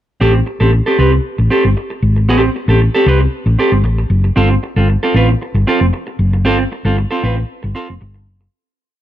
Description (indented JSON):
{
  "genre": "disco",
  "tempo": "115 BPM",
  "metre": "4/4",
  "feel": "straight",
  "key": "unclear",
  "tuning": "A4 = 442 Hz",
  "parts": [
    { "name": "clean electric guitar", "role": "accompaniment", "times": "0.2-8.4 s", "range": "C4 to B4", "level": "-15 LUFS", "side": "right 2 dB", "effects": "none" },
    { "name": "hollow-body short-scale fingered electric bass", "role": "bass", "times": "0.2-8.5 s", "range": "F1 to C2", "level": "-12 LUFS", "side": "equal", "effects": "none" }
  ],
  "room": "little or no reverb",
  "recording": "none",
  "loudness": "-11 LUFS",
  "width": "side -12 dB against mid",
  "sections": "0.2-8.5 groove",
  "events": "fade-out 6.4-8.5",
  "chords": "0.2 Am7; 4.4 G9sus4"
}